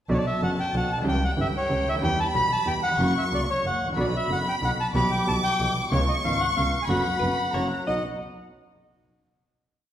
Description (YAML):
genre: tango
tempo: 185 BPM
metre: 3/4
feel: rubato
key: B minor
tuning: A4 = 435 Hz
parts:
  - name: bandoneon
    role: melody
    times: 0.1-8.0 s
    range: C#5 to B5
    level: -27 LUFS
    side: equal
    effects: none
  - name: warm studio violin section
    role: second line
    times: 0.1-8.0 s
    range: F#5 to D6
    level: -29 LUFS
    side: left 1 dB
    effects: none
  - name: warm grand piano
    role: accompaniment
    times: 0.1-8.0 s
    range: F#1 to G4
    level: -28 LUFS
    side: right 1 dB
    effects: none
  - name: dark double bass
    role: bass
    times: 0.1-8.0 s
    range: F#1 to E2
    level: -29 LUFS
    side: equal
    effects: none
  - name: archtop guitar, miked and amplified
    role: second line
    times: 7.2-8.0 s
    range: B4 to D#5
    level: -33 LUFS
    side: left 2 dB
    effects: none
room: wet recital hall reverb, RT60 1.6 s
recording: recorded in a church or concert hall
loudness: -22 LUFS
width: side -10 dB against mid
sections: 0.1-7.9 variation; 7.9-8.9 final chord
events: none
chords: 0.1 Bm; 1.1 C#dim; 2.0 Em; 3.0 F#; 4.0 Bm; 4.9 Em/B; 5.9 C#7; 6.9 Bm/F#; 7.5 F#; 7.9 B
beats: | 0.09 0.41 0.74 | 1.06 1.38 1.70 | 2.02 2.34 2.66 | 2.98 3.31 3.64 | 3.97 4.30 4.62 | 4.95 5.27 5.59 | 5.92 6.24 6.56 | 6.88 7.21 7.54 | 7.87